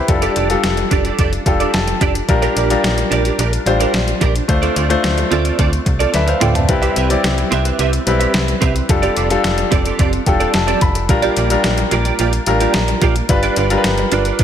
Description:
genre	1980s-style pop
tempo	109 BPM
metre	4/4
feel	straight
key	unclear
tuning	A4 = 439 Hz
part	clear concert grand piano	accompaniment	0.0-14.4 s	G3 to B5	-18 LUFS	left 3 dB	none
part	direct-recorded clean electric guitar	riff	0.0-14.4 s	Bb3 to E5	-20 LUFS	right 8 dB	ensemble chorus, ping-pong delay
part	slap-like FM bass	bass	0.1-14.4 s	E1 to D2	-20 LUFS	equal	none
part	clean 12-bit digital drum machine	drums	0.1-14.4 s	hi-hat, kick drum, snare drum, toms	-19 LUFS	equal	overdrive, gated reverb
room	light reverb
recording	none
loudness	-13 LUFS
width	side -9 dB against mid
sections	0.0-14.4 A section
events	grand piano fill 1.2-2.3, 10.0-11.1; drum fill 6.1-6.7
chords	0.1 F69; 2.3 Bb6; 4.5 Dm7; 6.7 Cmaj7; 8.9 F69; 11.1 Bb6; 13.3 G7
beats	| 0.08 0.63 1.18 1.73 | 2.29 2.83 3.39 3.94 | 4.49 5.04 5.59 6.14 | 6.69 7.24 7.79 8.34 | 8.89 9.44 9.99 10.54 | 11.09 11.64 12.19 12.74 | 13.29 13.85 14.39

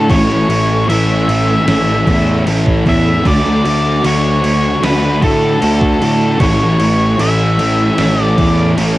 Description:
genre	rock, shoegaze and dream pop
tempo	76 BPM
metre	4/4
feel	straight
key	A major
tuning	A4 = 440 Hz
part	octave-fuzz lead guitar	melody	0.0-8.7 s	A4 to E5	-18 LUFS	equal	distortion, cassette tape, plate reverb, tape echo
part	soft string machine	sustained chords	0.0-9.0 s	D4 to C#6	-27 LUFS	right 1 dB	none
part	electric guitar through a small old amp	arpeggios	0.0-9.0 s	E3 to C#4	-22 LUFS	right 3 dB	none
part	overdriven electric guitar	riff	0.0-9.0 s	A2 to A4	-22 LUFS	right 6 dB	reverse reverb, cassette tape
part	thick fuzz guitar	riff	0.0-9.0 s	A2 to D4	-16 LUFS	left 3 dB	distortion, wide subtle chorus, cassette tape
part	fuzz picked electric bass	bass	0.0-9.0 s	A1 to A2	-16 LUFS	equal	overdrive
part	gated 80s digital drum machine	drums	0.1-9.0 s	crash cymbal, kick drum, snare drum	-20 LUFS	equal	gated reverb, gated reverb snare, overdrive, cassette tape
room	light reverb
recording	home recording on cassette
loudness	-10 LUFS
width	side -16 dB against mid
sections	0.0-9.0 A section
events	none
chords	0.1 Amaj7; 3.3 Dmaj7; 6.4 Amaj7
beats	| 0.10 0.89 1.68 2.46 | 3.25 4.04 4.83 5.62 | 6.41 7.20 7.99 8.78

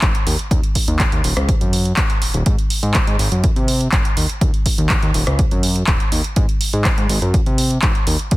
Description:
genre	filtered disco house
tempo	123 BPM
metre	4/4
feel	straight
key	Ab mixolydian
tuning	A4 = 438 Hz
part	fat analog bass	bass	0.0-8.4 s	Eb1 to C3	-19 LUFS	equal	sidechain pumping
part	electronic kick drum	drums	0.0-8.4 s	none	-17 LUFS	equal	none
part	punchy analog drum machine	drums	0.0-8.4 s	handclaps, hi-hat, rim click	-22 LUFS	right 1 dB	none
room	little or no reverb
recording	dense, heavily limited modern master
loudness	-15 LUFS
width	side -18 dB against mid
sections	0.0-8.4 A section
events	none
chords	none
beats	0.02 | 0.51 1.00 1.49 1.97 | 2.46 2.95 3.44 3.93 | 4.41 4.90 5.39 5.88 | 6.37 6.85 7.34 7.83 | 8.32

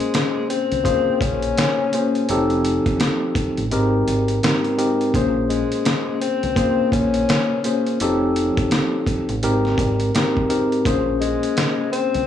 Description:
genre	hip hop, boom-bap hip-hop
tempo	84 BPM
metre	4/4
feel	swing 60% on 16ths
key	Bb dorian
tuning	A4 = 440 Hz
part	warm tenor saxophone	melody	0.0-12.3 s	Ab3 to Db4	-24 LUFS	left 6 dB	high-pass filter, low-pass filter, tape echo
part	bright tine electric piano	accompaniment	0.0-12.2 s	Ab2 to C5	-20 LUFS	left 1 dB	medium stereo tremolo, high-pass filter, low-pass filter
part	trip hop sampler-style drum kit	drums	0.0-12.3 s	hi-hat, kick drum, snare drum	-23 LUFS	equal	vintage 12-bit sampler grit
part	deep dub fingered electric bass	bass	0.7-12.3 s	F1 to Db2	-24 LUFS	equal	none
room	digital ambience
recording	dry, gritty hardware recording, studio ambience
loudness	-17 LUFS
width	side -10 dB against mid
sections	0.0-12.3 A section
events	kick muted 3.7-5.1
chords	0.0 Bbm7; 2.3 F9; 3.7 Abmaj7; 5.1 Bbm7; 8.0 F9; 9.4 Abmaj7; 10.9 Bbm7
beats	0.14 0.85 1.57 | 2.28 3.00 3.71 4.43 | 5.14 5.86 6.57 7.28 | 8.00 8.71 9.43 10.14 | 10.86 11.57

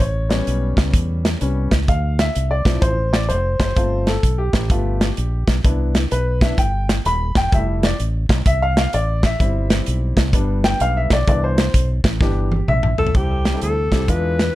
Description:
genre	uptempo gospel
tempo	128 BPM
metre	4/4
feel	swing 64% on 8ths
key	C major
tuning	A4 = 440 Hz
part	warm grand piano	accompaniment	0.0-14.6 s	C3 to B5	-22 LUFS	left 2 dB	none
part	fingered electric bass	bass	0.0-14.5 s	Eb1 to E2	-20 LUFS	equal	none
part	modern studio drum kit	drums	0.0-14.5 s	hi-hat, kick drum, snare drum, toms	-18 LUFS	equal	none
part	breathy alto saxophone	melody	13.0-14.6 s	G4 to B4	-22 LUFS	left 1 dB	tape echo
room	studio ambience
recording	dark, warm production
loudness	-16 LUFS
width	side -16 dB against mid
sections	0.0-13.2 A section; 13.2-14.6 B section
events	grand piano solo 0.0-13.2; drum fill 12.2-13.2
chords	0.0 A7; 1.9 Dm7; 3.8 G7sus4; 4.7 G7; 5.6 Cmaj7; 7.5 Fmaj7; 9.4 C/G; 10.3 G; 11.3 Cmaj7; 13.2 C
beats	0.47 0.94 1.41 | 1.88 2.35 2.83 3.30 | 3.77 4.24 4.71 5.18 | 5.65 6.12 6.59 7.05 | 7.52 7.99 8.46 8.93 | 9.40 9.87 10.34 10.81 | 11.28 11.74 12.21 12.68 | 13.15 13.62 14.09

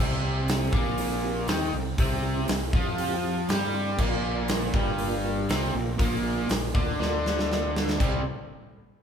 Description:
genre	blues rock power trio and southern rock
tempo	120 BPM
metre	4/4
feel	straight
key	C mixolydian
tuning	A4 = 445 Hz
part	mellow tonewheel organ	sustained chords	0.0-8.2 s	Bb3 to C6	-35 LUFS	right 4 dB	slow rotary speaker, chorus vibrato
part	crunchy overdriven guitar	riff	0.0-8.2 s	G2 to G4	-28 LUFS	equal	spring reverb
part	fuzz fingered electric bass	bass	0.0-8.2 s	G1 to G2	-31 LUFS	equal	overdrive
part	big rock drum kit	drums	0.5-8.1 s	crash cymbal, hi-hat, kick drum, snare drum	-28 LUFS	equal	none
room	moderate large studio reverb, RT60 1.1 s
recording	band playing live in one room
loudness	-24 LUFS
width	side -7 dB against mid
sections	0.0-8.0 A section; 8.0-9.0 B section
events	tonewheel organ fill 2.5-4.0; drum fill 7.0-8.0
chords	0.0 C; 4.0 Bb5; 8.0 C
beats	0.47 0.97 1.48 | 1.98 2.48 2.98 3.48 | 3.98 4.49 4.99 5.49 | 5.99 6.49 7.00 7.50 | 8.00

